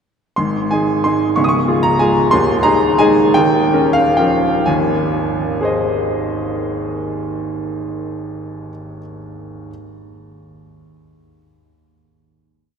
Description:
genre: classical, piano waltz.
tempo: 117-200 BPM.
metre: 3/4.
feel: rubato.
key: Ab major.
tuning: A4 = 440 Hz.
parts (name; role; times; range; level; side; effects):
bright baby grand piano; solo; 0.4-9.7 s; Db1 to Eb6; -14 LUFS; equal; none.
room: wet cathedral reverb, RT60 4.2 s.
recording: none.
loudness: -14 LUFS.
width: side -6 dB against mid.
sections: 0.4-4.7 A section; 4.7-7.5 final chord.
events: slowing down 1.8-4.7.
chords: 0.4 Ab; 1.4 Db; 2.3 Ab/Eb; 3.4 Eb9; 4.7 Ab.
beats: | 0.38 0.71 1.05 | 1.37 1.68 2.01 | 2.33 2.65 3.00 | 3.35 3.73 4.18 | 4.67 5.12 5.61 | 6.09 6.56 7.05.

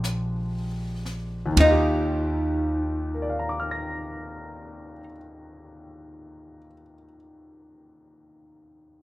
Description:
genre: jazz ballad.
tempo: 39 BPM.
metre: 4/4.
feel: swing 66% on 8ths.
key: Eb major.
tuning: A4 = 437 Hz.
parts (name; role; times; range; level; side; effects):
archtop guitar, miked and amplified; melody; 0.0-5.0 s; Eb4 to G4; -24 LUFS; right 1 dB; none.
warm grand piano; accompaniment; 0.0-9.0 s; Eb2 to Bb6; -32 LUFS; left 2 dB; none.
upright bass; bass; 0.0-5.0 s; Bb1 to Eb2; -27 LUFS; equal; none.
jazz brush drum kit; drums; 0.0-2.3 s; brushed snare drum, hi-hat, kick drum, ride cymbal, snare drum, toms; -27 LUFS; right 1 dB; none.
room: moderate studio reverb, RT60 0.6 s.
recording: rough home demo mix.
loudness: -23 LUFS.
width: side -17 dB against mid.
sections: 0.0-1.6 A section; 1.6-7.8 B section.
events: slowing down 0.0-1.6.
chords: 0.0 Bb13; 1.6 Ebmaj9.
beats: 0.04 | 1.57 3.13 4.68 6.23.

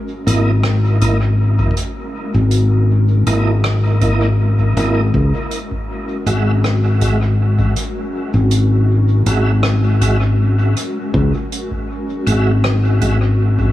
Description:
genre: ambient dub.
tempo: 80 BPM.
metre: 4/4.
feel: swing 53% on 16ths.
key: unclear.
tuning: A4 = 443 Hz.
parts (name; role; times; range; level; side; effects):
granular cloud pad; sustained chords; 0.0-13.7 s; G#3 to A#4; -26 LUFS; left 2 dB; built-in reverb.
overdriven tonewheel organ; stabs; 0.3-13.2 s; G#3 to E5; -23 LUFS; right 2 dB; chorus vibrato, fast rotary speaker, dub echo.
fingered electric bass; bass; 0.3-13.7 s; G#1 to C#2; -13 LUFS; left 1 dB; tube saturation.
soft-mallet drum kit; drums; 0.3-13.2 s; hi-hat, rim click; -26 LUFS; right 1 dB; dub echo.
electronic kick drum; drums; 1.0-13.7 s; none; -23 LUFS; equal; overdrive.
room: small room ambience.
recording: none.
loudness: -13 LUFS.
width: side -14 dB against mid.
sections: 0.0-13.7 A section.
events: none.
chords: 0.0 C#m69; 5.1 Eadd9.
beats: 0.64 1.39 | 2.14 2.89 3.64 4.39 | 5.14 5.89 6.64 7.39 | 8.14 8.89 9.64 10.39 | 11.14 11.89 12.64 13.39.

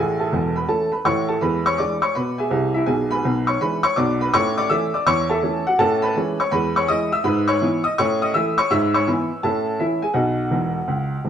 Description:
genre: jazz, stride piano.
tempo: 165 BPM.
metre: 4/4.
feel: swing 65% on 8ths.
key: A major, E major from 5.8 s.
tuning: A4 = 441 Hz.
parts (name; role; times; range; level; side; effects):
clear upright piano; solo; 0.0-11.3 s; D#1 to E6; -18 LUFS; equal; none.
room: wet stone room reverb, RT60 1.1 s.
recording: band playing live in one room.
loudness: -18 LUFS.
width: side -8 dB against mid.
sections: 0.0-11.3 A section.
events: upright piano fill 10.5-11.3.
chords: 0.0 A; 1.4 E7; 2.9 E7/B; 4.3 A; 5.8 Amaj7; 6.5 E; 7.2 E/G#; 8.0 A; 8.7 E/G#; 9.4 A; 10.2 B.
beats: 0.33 0.69 1.06 | 1.42 1.79 2.15 2.52 | 2.88 3.25 3.61 3.97 | 4.34 4.70 5.07 5.43 | 5.79 6.16 6.52 6.89 | 7.25 7.61 7.98 8.34 | 8.71 9.07 9.43 9.80 | 10.16 10.53 10.89 11.26.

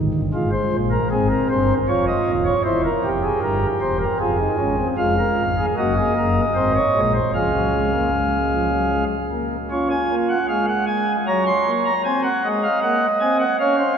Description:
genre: classical, baroque-style 4-part fugue for pipe organ.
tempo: 77 BPM.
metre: 3/4.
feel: straight.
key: F minor, Db major from 5.0 s.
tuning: A4 = 444 Hz.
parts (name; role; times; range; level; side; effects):
pipe organ, flutes; solo; 0.0-14.0 s; Eb1 to C6; -17 LUFS; equal; none.
room: wet cathedral reverb, RT60 4.8 s.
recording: nothing above 10.7 kHz.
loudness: -17 LUFS.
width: side -7 dB against mid.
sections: 0.0-5.0 A section; 5.0-9.7 B section; 9.7-14.0 C section.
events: none.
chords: 0.3 Fm/Ab; 1.9 Dbadd9; 2.6 C7/E; 4.2 Fm; 5.8 Ebm/Gb; 6.5 Ab; 7.3 Db; 11.3 Gb; 12.0 Ab7.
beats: | 0.33 1.10 1.88 | 2.65 3.42 4.20 | 4.98 5.76 6.55 | 7.34 8.13 8.92 | 9.71 10.49 11.27 | 12.04 12.82 13.59.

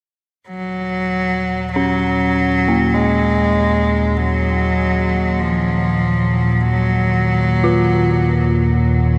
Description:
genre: ambient.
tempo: 49 BPM.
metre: 4/4.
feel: straight.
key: unclear.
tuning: A4 = 440 Hz.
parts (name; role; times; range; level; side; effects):
clear cello; melody; 0.5-9.1 s; F3 to Ab3; -20 LUFS; equal; diffuse ambient delay.
analog drone; drone; 1.0-9.2 s; Eb2 to Bb2; -20 LUFS; equal; chorus.
dark detuned synth bell; arpeggios; 1.8-9.2 s; Bb3 to F4; -25 LUFS; equal; chorus, diffuse ambient delay.
room: wet huge ambient reverb, RT60 7.2 s.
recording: none.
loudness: -17 LUFS.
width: mono.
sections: 0.5-9.2 A section.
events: filter sweep on synth drone 0.5-9.2.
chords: 0.5 Bbm/Eb.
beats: | 0.48 1.70 2.93 4.15 | 5.38 6.60 7.82 9.05.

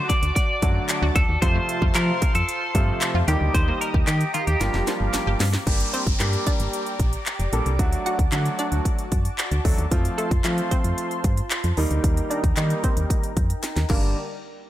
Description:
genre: dance-pop.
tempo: 113 BPM.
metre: 4/4.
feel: straight.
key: G minor.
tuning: A4 = 438 Hz.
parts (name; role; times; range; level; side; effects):
twelve-string electric guitar; melody; 0.0-5.4 s; F4 to D5; -26 LUFS; equal; spring reverb, dub echo.
warm concert grand piano; accompaniment; 0.0-14.1 s; C3 to A4; -29 LUFS; right 1 dB; sidechain pumping, low-pass filter.
lush unison pad; sustained chords; 0.0-14.1 s; G3 to Eb6; -32 LUFS; equal; chorus, sidechain pumping, low-pass filter.
wide unison pluck; arpeggios; 0.1-5.5 s; C3 to G4; -34 LUFS; equal; none.
house drum kit; drums; 0.1-14.0 s; crash cymbal, handclaps, hi-hat, kick drum, snare drum; -24 LUFS; equal; none.
solid FM bass; bass; 0.2-14.1 s; F1 to F3; -23 LUFS; equal; sidechain pumping.
group handclap; percussion; 0.9-5.3, 10.4-14.1 s; none; -35 LUFS; left 4 dB; none.
downlifter; sound effects; 5.7-9.9 s; none; -33 LUFS; left 1 dB; none.
hollow square pluck; melody; 5.9-14.1 s; A3 to F#5; -32 LUFS; right 1 dB; chorus, low-pass filter, dub echo.
room: digital ambience.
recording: none.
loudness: -20 LUFS.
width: side -13 dB against mid.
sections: 0.0-5.7 A section; 5.7-14.2 B section.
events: drum fill 4.6-5.7, 13.6-14.2; filter sweep 5.7-14.2.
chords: 0.0 D; 1.4 F; 3.3 Eb; 4.6 Gm7; 5.7 Gm; 7.8 D; 9.9 F; 11.8 Eb; 13.9 Gm; 14.2 N.C..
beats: 0.36 0.89 | 1.42 1.95 2.48 3.01 | 3.54 4.08 4.61 5.14 | 5.67 6.20 6.73 7.26 | 7.79 8.32 8.86 9.39 | 9.92 10.45 10.98 11.51 | 12.04 12.57 13.10 13.63.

